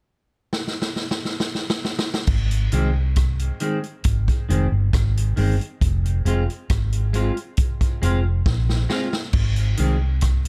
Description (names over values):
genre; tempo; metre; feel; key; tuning
roots reggae; 68 BPM; 4/4; straight; Ab major; A4 = 439 Hz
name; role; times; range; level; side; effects
vintage drum kit; drums; 0.5-10.5 s; crash cymbal, hi-hat, kick drum, rim click, snare drum; -26 LUFS; equal; none
vintage muted fingered electric bass; bass; 2.3-10.5 s; F1 to C2; -22 LUFS; equal; none
semi-hollow electric guitar; accompaniment; 2.7-10.0 s; Eb3 to F4; -30 LUFS; equal; lush chorus, dub echo
room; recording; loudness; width
small room ambience; none; -22 LUFS; mono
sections
0.0-2.3 A section; 2.3-9.3 B section; 9.3-10.5 C section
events
drum fill 0.5-2.3, 8.5-9.3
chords
0.0 N.C.; 2.3 Ab; 5.8 Fm; 9.3 Ab